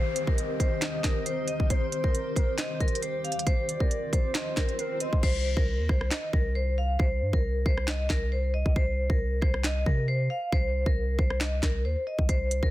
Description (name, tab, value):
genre	hip hop, trap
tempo	136 BPM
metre	4/4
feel	half-time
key	C minor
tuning	A4 = 440 Hz
part	vibraphone with medium mallets	melody	0.0-12.7 s	Bb4 to F5	-32 LUFS	left 1 dB	low-pass filter
part	granular cloud pad	sustained chords	0.0-5.2 s	Eb3 to C5	-36 LUFS	left 1 dB	built-in reverb
part	downlifter and swell	sound effects	0.0-5.2 s	none	-43 LUFS	equal	none
part	gliding portamento lead	second line	0.2-5.2 s	Bb4 to Eb5	-38 LUFS	right 1 dB	chorus, tape echo
part	trap drum kit	drums	0.2-12.7 s	crash cymbal, handclaps, hi-hat, kick drum, rim click, snare drum	-27 LUFS	equal	none
part	long sustained 808-style bass	bass	5.2-12.7 s	C2 to C3	-28 LUFS	equal	none
room	digital ambience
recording	dense, heavily limited modern master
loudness	-25 LUFS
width	side -16 dB against mid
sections	0.0-5.2 A section; 5.2-12.7 B section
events	hi-hats muted 5.2-12.3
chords	0.0 Cm; 5.2 N.C.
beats	0.38 0.82 1.26 | 1.70 2.14 2.58 3.02 | 3.47 3.91 4.35 4.79 | 5.23 5.67 6.11 6.55 | 7.00 7.44 7.88 8.32 | 8.76 9.20 9.64 10.08 | 10.53 10.97 11.41 11.85 | 12.29